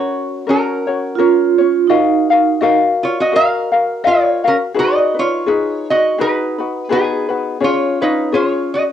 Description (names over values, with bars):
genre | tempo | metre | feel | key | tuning
Hawaiian | 84 BPM | 4/4 | swing 56% on 8ths | F# major | A4 = 441 Hz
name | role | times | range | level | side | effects
lap resonator guitar | melody | 0.0-8.8 s | B3 to E#5 | -16 LUFS | right 1 dB | none
ukulele | accompaniment | 0.0-8.9 s | C#4 to E#5 | -16 LUFS | left 4 dB | cassette tape
vibraphone with soft mallets | second line | 1.2-2.8 s | D#4 to E#4 | -13 LUFS | right 10 dB | cassette tape
room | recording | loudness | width
moderate studio reverb, RT60 0.6 s | home recording on cassette | -13 LUFS | side -9 dB against mid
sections
0.0-8.9 A section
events
none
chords
0.0 F#; 1.9 D#madd9; 4.8 B6/D#; 7.6 C#